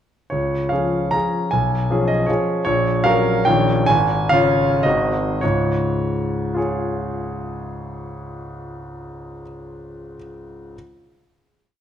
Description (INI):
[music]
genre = classical, romantic triple-time dance for piano with dotted rhythms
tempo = 98-164 BPM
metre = 3/4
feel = rubato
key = Db major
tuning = A4 = 440 Hz
[part]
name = clear concert grand piano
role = solo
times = 0.3-10.8 s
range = Ab1 to Bb5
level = -18 LUFS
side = equal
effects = none
[sound]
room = moderate recital hall reverb, RT60 1.5 s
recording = none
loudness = -17 LUFS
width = side -9 dB against mid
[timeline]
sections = 0.3-5.4 A section; 5.4-8.7 final chord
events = slowing down 2.1-5.4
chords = 0.3 Db; 1.5 Db7/Cb; 2.7 Gb/Bb; 3.5 Eb7/Bb; 3.9 Db/Ab; 4.9 Ab7; 5.4 Db